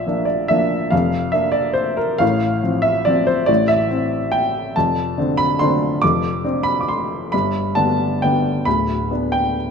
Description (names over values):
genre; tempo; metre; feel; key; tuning
classical, piano waltz; 140 BPM; 3/4; uneven beats, rubato; F major; A4 = 440 Hz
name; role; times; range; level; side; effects
clear upright piano; solo; 0.0-9.7 s; D1 to D6; -16 LUFS; equal; none
room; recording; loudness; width
wet recital hall reverb, RT60 1.3 s; close, detailed microphones; -16 LUFS; side -6 dB against mid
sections
0.0-9.7 A section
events
none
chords
0.0 Bb; 2.2 F/A; 4.7 Dm7/F; 7.3 G